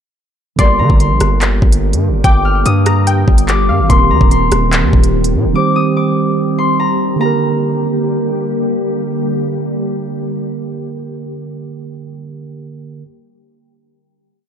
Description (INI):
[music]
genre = hip hop, drill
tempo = 145 BPM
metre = 4/4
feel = half-time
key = G minor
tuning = A4 = 440 Hz
[part]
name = concert harp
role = melody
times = 0.6-8.6 s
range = Bb5 to F6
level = -18 LUFS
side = left 5 dB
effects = none
[part]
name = warbly dusty pluck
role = second line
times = 0.6-3.9 s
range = D5 to Bb5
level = -21 LUFS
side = left 2 dB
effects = chorus, tape echo
[part]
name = mellow tine electric piano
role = accompaniment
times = 0.6-13.0 s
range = D3 to C5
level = -19 LUFS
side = right 6 dB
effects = none
[part]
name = glassy FM pad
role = sustained chords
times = 1.1-10.7 s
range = D3 to G4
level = -20 LUFS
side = left 2 dB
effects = ensemble chorus, built-in reverb
[part]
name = distorted 808-style bass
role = bass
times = 0.6-5.5 s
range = Eb1 to D3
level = -14 LUFS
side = equal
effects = distortion
[part]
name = drill drum kit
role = drums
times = 0.6-5.3 s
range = handclaps, hi-hat, kick drum, rim click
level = -13 LUFS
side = equal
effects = none
[sound]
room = light reverb, digital ambience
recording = dark, warm production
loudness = -11 LUFS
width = side -8 dB against mid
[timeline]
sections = 0.6-7.2 hook; 7.2-10.5 final chord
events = none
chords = 0.6 Gm; 3.9 Eb6; 5.6 Cm; 7.2 Gm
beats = | 0.59 1.00 1.42 1.83 | 2.24 2.66 3.07 3.48 | 3.90 4.31 4.73 5.14 | 5.55 5.97 6.38 6.79 | 7.21 7.62 8.04 8.45 | 8.86 9.28 9.69 10.11